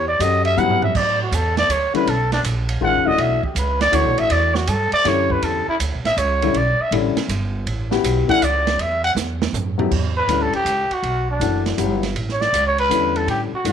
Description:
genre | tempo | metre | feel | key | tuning
modal jazz | 161 BPM | 3/4 | swing 66% on 8ths | E dorian | A4 = 439 Hz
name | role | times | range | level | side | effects
growling trumpet | melody | 0.0-13.7 s | D4 to F#5 | -19 LUFS | right 1 dB | none
warm concert grand piano | accompaniment | 0.0-13.7 s | D3 to A4 | -22 LUFS | left 10 dB | none
upright bass | bass | 0.0-13.7 s | D1 to A2 | -23 LUFS | right 1 dB | none
open jazz drum kit | drums | 0.2-13.7 s | crash cymbal, hi-hat, kick drum, ride cymbal, snare drum, toms | -26 LUFS | right 7 dB | none
room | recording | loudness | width
light reverb | 1960s-style stereo with parts hard left and right | -17 LUFS | side -8 dB against mid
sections
0.0-9.9 A section; 9.9-13.7 B section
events
trumpet solo 0.0-9.9; drum fill 0.6-1.0, 9.2-9.9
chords
0.0 E13sus4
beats
0.20 0.58 | 0.95 1.32 1.70 | 2.07 2.44 2.81 | 3.19 3.56 3.93 | 4.31 4.68 5.05 | 5.43 5.80 6.17 | 6.55 6.92 7.29 | 7.67 8.04 8.41 | 8.79 9.16 9.53 | 9.91 10.28 10.65 | 11.03 11.40 11.78 | 12.15 12.53 12.90 | 13.28 13.65

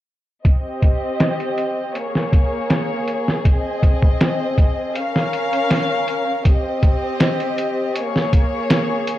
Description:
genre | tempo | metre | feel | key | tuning
trip hop | 80 BPM | 4/4 | straight | C phrygian | A4 = 440 Hz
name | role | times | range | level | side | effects
dark studio violin section | sustained chords | 0.4-9.2 s | Bb3 to F5 | -21 LUFS | left 1 dB | low-pass filter
trip hop sampler-style drum kit | drums | 0.4-9.2 s | hi-hat, kick drum, snare drum | -17 LUFS | equal | low-pass filter on kick, studio ambience, low-pass filter on hats, low-pass filter on snare
room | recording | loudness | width
light reverb, digital ambience | none | -16 LUFS | side -14 dB against mid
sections
0.4-9.2 A section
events
filter sweep on violin section 0.4-9.2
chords
0.4 Cm; 1.9 Bbm7; 3.4 Ab; 4.9 Db6; 6.4 Cm; 7.9 Bbm7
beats
| 0.45 1.20 1.95 2.70 | 3.45 4.20 4.95 5.70 | 6.45 7.20 7.95 8.70

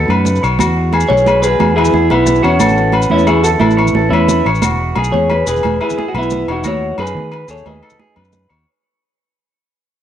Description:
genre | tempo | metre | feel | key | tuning
highlife guitar band | 119 BPM (dotted quarters) | 12/8 | straight | E major | A4 = 440 Hz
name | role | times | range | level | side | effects
fingerpicked acoustic archtop guitar | accompaniment | 0.0-8.6 s | E2 to F#4 | -25 LUFS | left 5 dB | none
electric guitar through a small old amp | arpeggios | 0.0-8.7 s | F#4 to C#5 | -20 LUFS | right 3 dB | tape echo
fingered electric bass | bass | 0.0-8.6 s | E1 to D#3 | -17 LUFS | equal | none
agogo bells | percussion | 0.1-8.7 s | none | -22 LUFS | left 7 dB | none
congas | percussion | 0.1-8.6 s | none | -20 LUFS | right 5 dB | none
maracas | percussion | 0.3-8.4 s | none | -28 LUFS | left 7 dB | none
semi-hollow electric guitar | melody | 1.1-8.5 s | B3 to D#5 | -15 LUFS | left 1 dB | cassette tape
room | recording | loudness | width
light reverb, studio ambience | home recording on cassette | -11 LUFS | side -10 dB against mid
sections
0.0-4.6 A section; 4.6-8.7 B section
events
fade-out 4.6-8.7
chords
0.0 B; 0.6 Eadd9; 2.6 Aadd9; 4.6 Eadd9; 6.6 B/D#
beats
0.09 | 0.59 1.10 1.60 2.11 | 2.61 3.11 3.62 4.12 | 4.62 5.13 5.63 6.14 | 6.64 7.15 7.65 8.16

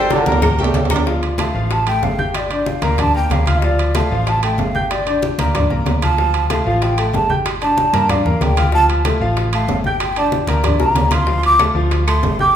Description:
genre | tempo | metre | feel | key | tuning
latin, salsa | 188 BPM | 4/4 | straight | D minor | A4 = 440 Hz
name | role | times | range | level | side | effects
warm horn section | melody | 0.0-0.7 s | G4 to Bb4 | -23 LUFS | left 1 dB | none
clear concert grand piano | accompaniment | 0.0-12.6 s | F3 to G6 | -21 LUFS | left 1 dB | none
hollow-body short-scale fingered electric bass | bass | 0.0-12.6 s | G1 to G2 | -19 LUFS | equal | none
brilliant trombone section | second line | 0.1-0.8 s | D3 to A3 | -23 LUFS | right 2 dB | none
congas | percussion | 0.1-12.6 s | none | -24 LUFS | left 2 dB | none
cowbell and bongos | percussion | 0.1-12.6 s | none | -27 LUFS | left 5 dB | none
timbales and agogo bells | percussion | 0.1-12.4 s | none | -24 LUFS | right 6 dB | none
claves | percussion | 0.4-1.1, 11.6-12.2 s | none | -33 LUFS | left 4 dB | none
breathy mellow jazz flute | melody | 1.4-12.6 s | D5 to D6 | -19 LUFS | right 1 dB | none
room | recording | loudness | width
wet recital hall reverb, RT60 1.4 s | minimal, uncompressed stereo recording | -14 LUFS | side -9 dB against mid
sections
0.0-1.1 A section; 1.1-12.6 B section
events
drum fill 0.0-1.1, 10.6-11.3; flute solo 1.1-12.6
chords
0.0 Gmadd9; 1.1 Dm; 2.4 Gm; 3.6 Dm; 4.9 Gm; 6.2 Dm; 7.5 Gmadd9; 8.7 Dm; 10.0 Gm; 11.3 Dm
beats
0.11 0.43 0.75 | 1.07 1.39 1.71 2.03 | 2.35 2.67 2.99 3.31 | 3.63 3.95 4.27 4.59 | 4.91 5.23 5.55 5.87 | 6.19 6.50 6.82 7.14 | 7.46 7.78 8.10 8.41 | 8.73 9.05 9.37 9.69 | 10.01 10.32 10.64 10.96 | 11.28 11.60 11.92 12.24 | 12.55

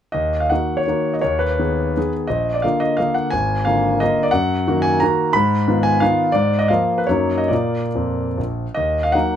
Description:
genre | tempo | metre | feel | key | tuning
classical, romantic triple-time dance for piano with dotted rhythms | 132-188 BPM | 3/4 | rubato | Eb minor | A4 = 440 Hz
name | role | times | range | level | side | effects
clear grand piano | solo | 0.1-9.4 s | Ab1 to Cb6 | -16 LUFS | equal | none
room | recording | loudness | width
light reverb | close, detailed microphones | -16 LUFS | side -9 dB against mid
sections
0.1-8.8 A section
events
none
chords
0.1 Ebm; 1.2 Abm/Eb; 2.3 Bb; 3.3 Bb7/Ab; 4.3 Ebm/Gb; 5.3 Fm7b5/Ab; 6.3 Bb5/Ab; 7.1 Ebm/Gb; 7.5 Bb; 8.8 Ebm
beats
| 0.15 0.50 0.88 | 1.24 1.61 1.97 | 2.30 2.64 2.99 | 3.33 3.67 4.01 | 4.33 4.67 5.01 | 5.35 5.68 6.01 | 6.34 6.69 7.09 | 7.51 7.95 8.38 | 8.78 9.15

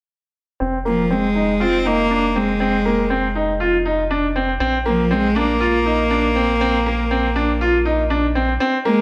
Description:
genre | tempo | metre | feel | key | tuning
piano and strings electronica | 120 BPM | 4/4 | straight | F dorian | A4 = 441 Hz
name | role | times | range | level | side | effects
bright concert grand piano | riff | 0.6-9.0 s | Bb3 to F4 | -21 LUFS | equal | low-pass filter, digital delay
round analog bass | bass | 0.6-8.6 s | F1 to Bb1 | -27 LUFS | equal | none
bright cello | melody | 0.9-9.0 s | F3 to C4 | -22 LUFS | equal | none
room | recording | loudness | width
wet recital hall reverb, RT60 1.6 s | none | -18 LUFS | mono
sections
0.6-8.6 A section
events
filter sweep on grand piano 0.6-8.6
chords
0.6 Fm; 4.6 Bb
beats
| 0.61 1.11 1.61 2.11 | 2.61 3.11 3.61 4.11 | 4.61 5.11 5.61 6.11 | 6.61 7.11 7.61 8.11 | 8.61

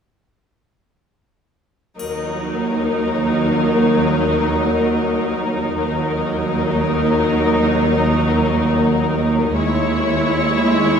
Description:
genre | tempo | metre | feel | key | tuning
cinematic, suspense film score | free time | none | none | Eb phrygian | A4 = 438 Hz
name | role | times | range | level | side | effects
dark symphonic violin section | melody | 2.0-11.0 s | Bb4 to Db5 | -22 LUFS | left 6 dB | none
warm symphonic viola section | accompaniment | 2.0-11.0 s | Gb3 to Fb4 | -20 LUFS | right 1 dB | none
warm studio double bass section | bass | 2.0-11.0 s | Eb2 | -22 LUFS | right 3 dB | none
warm symphonic cello section | bass | 2.0-11.0 s | Eb2 | -22 LUFS | right 2 dB | none
triangle | percussion | 2.0-3.5 s | none | -42 LUFS | left 2 dB | none
room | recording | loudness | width
wet concert hall reverb, RT60 2.0 s | recorded in a church or concert hall | -15 LUFS | side -7 dB against mid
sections
2.0-11.0 A section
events
none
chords
2.0 Ebm; 9.6 Dbm/Eb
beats
free time

